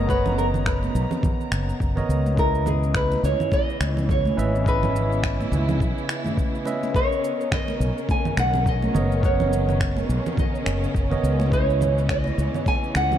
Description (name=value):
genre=sunset chillout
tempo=105 BPM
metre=4/4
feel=swing 58% on 16ths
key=B major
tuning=A4 = 440 Hz
part: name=nylon-string guitar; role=melody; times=0.0-13.2 s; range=G#4 to G#5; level=-26 LUFS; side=right 1 dB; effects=tape echo
part: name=barky tine electric piano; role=accompaniment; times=0.0-13.2 s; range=B3 to F#5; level=-29 LUFS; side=equal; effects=auto-pan, ping-pong delay
part: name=muted studio string section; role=sustained chords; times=0.0-13.2 s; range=C#3 to A#5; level=-31 LUFS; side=equal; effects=none
part: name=mellow fretless electric bass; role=bass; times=0.0-13.2 s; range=F#1 to C#2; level=-23 LUFS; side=equal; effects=none
part: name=electronic cabasa, congas and finger snaps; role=drums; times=0.1-13.2 s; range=none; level=-30 LUFS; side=right 2 dB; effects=none
part: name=electronic kick drum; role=drums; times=0.1-12.8 s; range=none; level=-24 LUFS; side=equal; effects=none
part: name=congas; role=percussion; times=0.3-13.2 s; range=none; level=-32 LUFS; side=right 2 dB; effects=none
room=light reverb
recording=dark, warm production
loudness=-20 LUFS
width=side -10 dB against mid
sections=0.0-13.2 A section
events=none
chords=0.0 Bmaj9; 2.4 C#m9; 6.9 Bmaj9; 11.5 C#m9